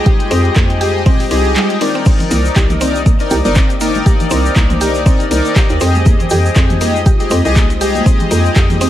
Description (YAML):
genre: deep house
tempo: 120 BPM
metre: 4/4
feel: swing 56% on 16ths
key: unclear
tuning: A4 = 440 Hz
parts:
  - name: warbly tape-like pad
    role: sustained chords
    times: 0.0-8.9 s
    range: Ab3 to D6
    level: -24 LUFS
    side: equal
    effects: chorus, built-in reverb, phaser, sidechain pumping
  - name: chorused polysynth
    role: stabs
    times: 0.0-8.9 s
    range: Eb4 to Eb5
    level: -17 LUFS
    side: left 3 dB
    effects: sidechain pumping, ping-pong delay
  - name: analog string pad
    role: texture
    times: 0.0-8.9 s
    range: Eb5 to G5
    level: -28 LUFS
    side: equal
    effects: ensemble chorus, sidechain pumping
  - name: mallet-like synth pluck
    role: arpeggios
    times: 0.1-8.9 s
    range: G3 to G4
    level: -21 LUFS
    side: right 2 dB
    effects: chorus, sidechain pumping, ping-pong delay
  - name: electronic kick drum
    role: drums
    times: 0.1-8.7 s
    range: none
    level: -11 LUFS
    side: equal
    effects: none
  - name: punchy analog drum machine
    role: drums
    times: 0.1-8.9 s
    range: crash cymbal, handclaps, hi-hat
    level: -23 LUFS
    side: equal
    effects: none
  - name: hollow knocking FM bass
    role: bass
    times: 0.3-8.9 s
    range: G1 to Bb2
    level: -16 LUFS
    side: equal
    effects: sidechain pumping
  - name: tube shaker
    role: percussion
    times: 2.1-8.9 s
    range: none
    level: -29 LUFS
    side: left 4 dB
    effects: none
  - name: congas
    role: percussion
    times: 2.2-8.8 s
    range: none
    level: -23 LUFS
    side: right 1 dB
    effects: none
room: little or no reverb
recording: vinyl crackle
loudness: -10 LUFS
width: side -12 dB against mid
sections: 0.0-8.9 A section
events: break 1.6-2.1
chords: 0.0 Fm9; 2.1 Cm9; 6.1 Fm9